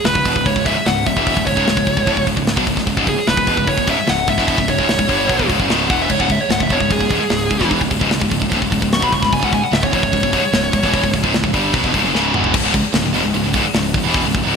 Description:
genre	heavy metal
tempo	149 BPM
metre	4/4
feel	straight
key	C# phrygian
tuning	A4 = 440 Hz
part	dark smooth lead guitar	melody	0.0-11.1 s	G#4 to C#6	-19 LUFS	equal	overdrive
part	high-gain distorted guitar	riff	0.0-14.5 s	C#2 to G3	-21 LUFS	right 11 dB	distortion
part	tight metal drum kit	drums	0.0-14.4 s	crash cymbal, hi-hat, kick drum, snare drum, toms	-20 LUFS	equal	none
part	high-gain distorted guitar	riff	0.1-14.6 s	C#2 to G3	-20 LUFS	left 12 dB	distortion
part	fuzz picked electric bass	bass	0.1-14.5 s	C#1 to B1	-23 LUFS	equal	overdrive
room	moderate lush hall reverb, RT60 1.9 s, small room reverb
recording	bright 1980s-style digital production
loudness	-14 LUFS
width	side -6 dB against mid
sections	0.0-12.5 A section; 12.5-14.6 B section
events	lead electric guitar solo 0.0-12.5; drum fill 12.1-12.5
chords	0.0 C#m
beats	0.05 0.46 0.86 | 1.26 1.67 2.07 2.47 | 2.88 3.28 3.68 4.08 | 4.49 4.89 5.29 5.70 | 6.10 6.50 6.91 7.31 | 7.71 8.12 8.52 8.92 | 9.32 9.73 10.13 10.53 | 10.93 11.34 11.74 12.14 | 12.54 12.94 13.34 13.74 | 14.15 14.55

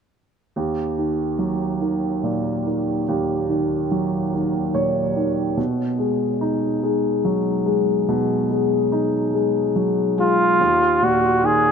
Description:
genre	six-eight pop ballad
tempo	48 BPM (dotted quarters)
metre	6/8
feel	straight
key	Eb minor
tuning	A4 = 440 Hz
part	warm grand piano	accompaniment	0.6-11.7 s	Eb2 to Db5	-19 LUFS	equal	none
part	clear flugelhorn	melody	10.2-11.7 s	F4 to Ab4	-15 LUFS	right 1 dB	none
room	moderate huge ambient reverb, RT60 8.2 s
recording	none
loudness	-18 LUFS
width	side -6 dB against mid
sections	0.6-10.6 A section; 10.6-11.7 B section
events	grand piano fill 4.3-5.6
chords	0.6 Ebm7; 5.6 B6; 10.6 Ebm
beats	| 0.56 1.82 | 3.07 4.33 | 5.58 6.84 | 8.09 9.35 | 10.60

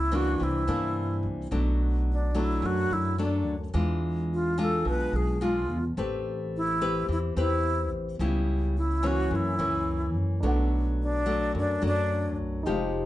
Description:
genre	bossa nova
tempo	108 BPM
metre	4/4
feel	straight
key	unclear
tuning	A4 = 441 Hz
part	bright alto flute	melody	0.0-12.4 s	D4 to B4	-29 LUFS	equal	none
part	nylon-string guitar	accompaniment	0.0-13.1 s	F#2 to B4	-30 LUFS	left 2 dB	none
part	upright bass	bass	0.0-13.1 s	F1 to G2	-28 LUFS	equal	none
part	warm grand piano	accompaniment	10.4-13.1 s	D4 to F#5	-34 LUFS	right 2 dB	none
room	moderate studio reverb, RT60 0.6 s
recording	heard from further back in the room, nothing above 10.5 kHz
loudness	-25 LUFS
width	side -15 dB against mid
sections	0.0-13.1 A section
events	none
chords	0.4 C9; 1.5 Bm7; 3.7 E7b9; 6.0 Am9; 8.2 C#m7b5; 9.3 F#7; 10.4 Bm7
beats	0.40 0.96 | 1.51 2.07 2.63 3.18 | 3.74 4.30 4.85 5.41 | 5.97 6.52 7.08 7.64 | 8.20 8.75 9.31 9.87 | 10.43 10.98 11.54 12.10 | 12.66

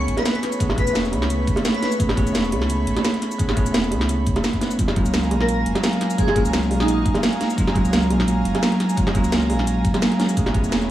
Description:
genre	liquid drum and bass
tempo	172 BPM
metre	4/4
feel	swing 54% on 16ths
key	unclear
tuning	A4 = 440 Hz
part	airy dreamy lead	melody	0.0-1.9, 5.4-7.1 s	Eb4 to B4	-27 LUFS	equal	chorus, phaser, dub echo
part	bell-like tine electric piano	accompaniment	0.0-10.9 s	Gb3 to B4	-23 LUFS	right 1 dB	vintage 12-bit sampler grit, tape echo
part	airy breathy pad	sustained chords	0.0-10.9 s	Gb3 to B5	-28 LUFS	right 1 dB	chorus, sidechain pumping
part	sub bass with octave	bass	0.0-10.9 s	E1 to C#2	-25 LUFS	equal	none
part	drum and bass drum kit	drums	0.1-10.9 s	hi-hat, shaker, snare drum	-24 LUFS	equal	none
part	bongos	percussion	0.2-10.5 s	none	-28 LUFS	right 2 dB	none
part	electronic kick drum	drums	0.6-10.6 s	none	-22 LUFS	equal	none
room	light reverb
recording	small room ambience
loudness	-18 LUFS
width	side -13 dB against mid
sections	0.0-10.9 A section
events	none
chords	0.0 Amaj9; 4.8 Gbmaj9; 10.4 Amaj9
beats	0.25 | 0.60 0.95 1.30 1.65 | 2.00 2.35 2.70 3.04 | 3.39 3.74 4.09 4.44 | 4.79 5.14 5.49 5.83 | 6.18 6.53 6.88 7.23 | 7.58 7.93 8.28 8.63 | 8.97 9.32 9.67 10.02 | 10.37 10.72

